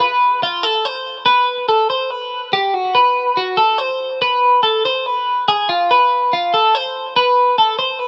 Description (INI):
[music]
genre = rock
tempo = 285 BPM (eighths)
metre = 7/8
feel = straight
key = unclear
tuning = A4 = 440 Hz
[part]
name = twelve-string electric guitar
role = solo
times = 0.0-8.1 s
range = F4 to C5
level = -16 LUFS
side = equal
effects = lush chorus
[sound]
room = little or no reverb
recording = rough home demo mix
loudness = -16 LUFS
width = mono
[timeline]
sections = 0.0-2.1 A section; 2.1-8.1 B section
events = none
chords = none